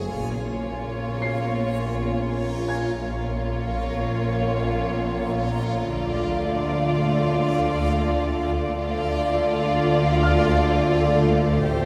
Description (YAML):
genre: cinematic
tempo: 83 BPM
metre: 4/4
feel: straight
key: unclear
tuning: A4 = 439 Hz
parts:
  - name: warm studio violin section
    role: melody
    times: 0.0-11.9 s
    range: C5 to D5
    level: -33 LUFS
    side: equal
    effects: none
  - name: warm studio violin section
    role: second line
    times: 0.0-11.9 s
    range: E#4 to G4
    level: -32 LUFS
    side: equal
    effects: none
  - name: dark studio viola section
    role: accompaniment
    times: 0.0-11.9 s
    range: A3 to A#3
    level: -33 LUFS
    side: equal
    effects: none
  - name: backwards swelling texture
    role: sustained chords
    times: 0.0-11.9 s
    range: E#4 to A#5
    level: -34 LUFS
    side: equal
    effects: built-in reverb
  - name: mellow French horn section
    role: sustained chords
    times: 0.0-11.9 s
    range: C4 to G4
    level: -32 LUFS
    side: equal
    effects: none
  - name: dark studio cello section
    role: bass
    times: 0.0-11.9 s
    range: A2 to D3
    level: -31 LUFS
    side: equal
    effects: none
  - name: warm symphonic double bass section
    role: bass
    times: 0.0-11.9 s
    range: A1 to D2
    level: -31 LUFS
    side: equal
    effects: none
  - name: swarming drone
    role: drone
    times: 0.0-11.9 s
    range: A1 to D2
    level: -32 LUFS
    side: equal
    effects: built-in reverb
  - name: clear grand piano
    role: texture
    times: 0.0-11.9 s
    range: F5 to B#6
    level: -36 LUFS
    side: equal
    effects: none
room: wet concert hall reverb, RT60 1.8 s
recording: recorded in a church or concert hall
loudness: -23 LUFS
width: mono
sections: 0.0-11.9 A section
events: none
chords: 0.1 A#m; 5.9 Dm